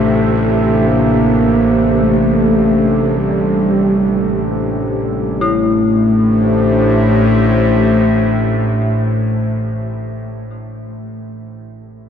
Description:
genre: dark ambient drone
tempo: free time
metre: none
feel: none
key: A in sen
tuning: A4 = 442 Hz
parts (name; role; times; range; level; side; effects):
- mellow horn-like synth lead; melody; 0.0-9.7 s; G3 to Bb3; -16 LUFS; left 1 dB; chorus, tape echo
- dark analog pad; sustained chords; 0.0-10.4 s; A3 to E5; -19 LUFS; right 1 dB; wide subtle chorus
- dark detuned synth bell; arpeggios; 0.0-12.1 s; E4 to A4; -24 LUFS; left 3 dB; none
- bowed-like drone; drone; 0.0-9.7 s; A1 to C3; -17 LUFS; equal; built-in reverb
room: wet cathedral reverb, RT60 7.3 s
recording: dark, warm production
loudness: -12 LUFS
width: side -8 dB against mid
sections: 0.0-5.4 A section; 5.4-9.9 B section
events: none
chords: 0.0 Am

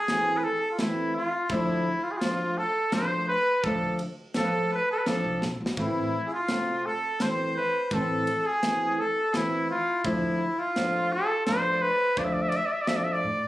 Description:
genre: klezmer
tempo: 84 BPM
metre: 3/4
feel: straight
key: D dorian sharp4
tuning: A4 = 440 Hz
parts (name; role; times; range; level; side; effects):
- clear cornet; melody; 0.0-13.5 s; E4 to E5; -26 LUFS; equal; none
- accordion; second line; 0.0-13.5 s; E4 to D5; -35 LUFS; right 2 dB; none
- flamenco guitar; accompaniment; 0.1-13.2 s; C3 to F4; -30 LUFS; equal; none
- tight metal drum kit; drums; 0.1-13.0 s; kick drum, ride cymbal, snare drum; -34 LUFS; equal; none
- upright bass; bass; 1.5-13.5 s; A1 to A2; -36 LUFS; equal; none
room: moderate small room reverb, RT60 0.6 s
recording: recorded on a phone in the room, club reverb, compression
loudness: -24 LUFS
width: side -15 dB against mid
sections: 0.0-13.5 A section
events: drum fill 5.4-5.8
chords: 0.0 Am; 1.5 Dm; 5.8 Am; 10.0 Dm

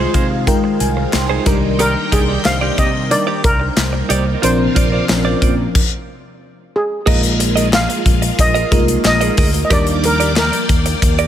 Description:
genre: 1980s-style pop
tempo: 91 BPM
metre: 4/4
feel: straight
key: unclear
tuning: A4 = 440 Hz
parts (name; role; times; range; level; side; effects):
- FM electric piano with soft pad layer; accompaniment; 0.0-11.3 s; F3 to C6; -20 LUFS; left 1 dB; chorus, phaser
- phased string machine; sustained chords; 0.0-11.3 s; C3 to G5; -24 LUFS; left 1 dB; ensemble chorus, phaser
- direct-recorded clean electric guitar; riff; 0.0-11.3 s; Eb4 to Eb5; -22 LUFS; right 7 dB; wide subtle chorus, tape echo
- fretless electric bass; bass; 0.0-11.3 s; Bb1 to C3; -19 LUFS; equal; none
- modern studio drum kit; drums; 0.1-11.3 s; crash cymbal, hi-hat, kick drum, snare drum, tambourine; -17 LUFS; equal; none
- group handclap; percussion; 1.1-10.5 s; none; -30 LUFS; left 3 dB; none
- steel pan; melody; 1.8-11.3 s; Ab4 to F5; -20 LUFS; equal; tape echo
room: light reverb, small room ambience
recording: none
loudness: -13 LUFS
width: side -10 dB against mid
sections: 0.0-7.1 A section; 7.1-11.3 B section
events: FM electric piano fill 0.0-1.8; stop 5.8-7.1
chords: 0.0 Fm7/C; 1.5 Ebmaj7/C; 4.4 Bbadd9; 7.1 Bb7sus4; 9.7 Ebmaj7

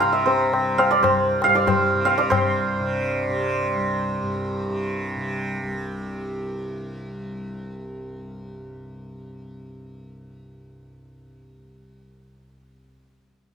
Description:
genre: indian classical, Hindustani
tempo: 118 BPM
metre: 7/4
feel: straight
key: unclear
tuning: A4 = 440 Hz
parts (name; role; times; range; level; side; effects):
- santur; melody; 0.0-5.7 s; C5 to C6; -21 LUFS; right 2 dB; none
- tanpura; drone; 0.0-12.8 s; C2 to C3; -29 LUFS; equal; none
- tabla; percussion; 0.0-2.5 s; none; -24 LUFS; left 4 dB; none
room: moderate studio reverb, RT60 0.7 s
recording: none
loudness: -20 LUFS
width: side -6 dB against mid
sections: 0.0-2.3 A section; 2.3-5.9 B section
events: none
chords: none

